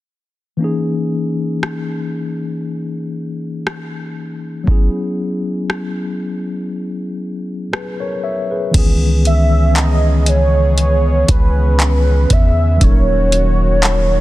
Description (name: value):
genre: contemporary R&B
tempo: 59 BPM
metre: 4/4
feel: swing 54% on 16ths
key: C# dorian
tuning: A4 = 440 Hz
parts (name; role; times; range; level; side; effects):
- mellow tine electric piano; accompaniment; 0.6-14.2 s; D#3 to E5; -20 LUFS; left 2 dB; medium stereo tremolo
- booming analog drum machine; drums; 1.6-14.1 s; crash cymbal, handclaps, hi-hat, kick drum, rim click; -16 LUFS; equal; none
- warm analog pad; sustained chords; 8.7-14.2 s; C#3 to G#4; -25 LUFS; right 2 dB; chorus, sidechain pumping
- long sustained 808-style bass; bass; 8.7-14.2 s; D#1 to E2; -14 LUFS; equal; none
- warm velvety synth lead; melody; 9.3-14.2 s; B4 to E5; -18 LUFS; right 1 dB; chorus, tape echo
- mallet-like synth pluck; texture; 9.8-12.5 s; A#5; -38 LUFS; right 3 dB; none
room: little or no reverb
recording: dense, heavily limited modern master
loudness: -14 LUFS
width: side -16 dB against mid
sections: 0.6-8.7 A section; 8.7-14.2 B section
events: break 6.7-8.7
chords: 0.6 C#m69; 4.7 F#7sus4; 8.7 C#m9; 12.8 D#m7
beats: | 0.61 1.62 2.64 3.66 | 4.67 5.69 6.71 7.72 | 8.74 9.76 10.78 11.79 | 12.81 13.83